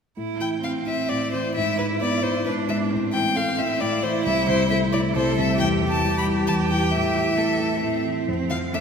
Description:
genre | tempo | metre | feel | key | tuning
quick classical-period movement for piano quartet | 133 BPM | 3/4 | rubato | A minor | A4 = 440 Hz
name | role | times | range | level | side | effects
bright cello | second line | 0.2-8.8 s | C4 to A4 | -27 LUFS | right 6 dB | none
dark grand piano | accompaniment | 0.2-8.8 s | C2 to E4 | -24 LUFS | equal | none
clear violin | melody | 0.4-8.8 s | B4 to B5 | -24 LUFS | left 3 dB | none
room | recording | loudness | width
wet church reverb, RT60 2.9 s | minimal, uncompressed stereo recording | -20 LUFS | side -6 dB against mid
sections
0.2-8.8 A section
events
none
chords
0.2 Am; 1.6 E7/G#; 2.9 Am; 4.3 Am/C; 5.6 Emadd11; 6.9 Am; 8.3 Dm/F (rootless)

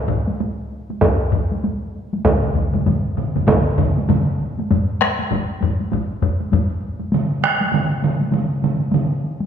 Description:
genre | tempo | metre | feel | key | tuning
japanese traditional, taiko drum ensemble | 98 BPM | 4/4 | swing 60% on 16ths | none | none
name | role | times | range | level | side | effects
taiko ensemble | percussion | 0.1-6.7 s | none | -21 LUFS | left 3 dB | none
taiko ensemble | percussion | 0.3-9.5 s | none | -24 LUFS | equal | none
solo taiko drums | percussion | 1.0-3.7 s | none | -20 LUFS | right 2 dB | none
solo taiko drums | percussion | 2.3-9.1 s | none | -20 LUFS | right 3 dB | none
room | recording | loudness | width
wet recital hall reverb, RT60 1.8 s | recorded in a church or concert hall | -17 LUFS | side -8 dB against mid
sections
0.0-4.7 A section; 4.7-9.5 B section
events
speeding up 0.0-9.5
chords
none

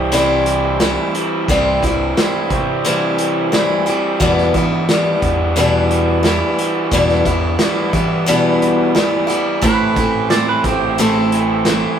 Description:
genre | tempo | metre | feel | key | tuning
folk rock and heartland rock | 88 BPM | 4/4 | straight | unclear | A4 = 441 Hz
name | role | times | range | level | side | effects
picked steel-string acoustic guitar | accompaniment | 0.0-12.0 s | E2 to E4 | -16 LUFS | left 1 dB | none
raw garage guitar | riff | 0.0-12.0 s | E2 to C4 | -20 LUFS | right 2 dB | overdrive
deep dub picked electric bass | bass | 0.0-11.8 s | A1 to E3 | -23 LUFS | equal | none
vintage drum kit | drums | 0.1-11.8 s | hi-hat, kick drum, snare drum | -20 LUFS | equal | none
pedal steel guitar | second line | 9.6-11.6 s | G4 to D5 | -20 LUFS | right 5 dB | none
room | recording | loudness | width
moderate studio reverb, RT60 0.5 s | rough rehearsal-room recording, warm saturation | -13 LUFS | side -8 dB against mid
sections
0.0-12.0 A section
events
none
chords
0.0 C; 4.2 Em; 9.6 Am

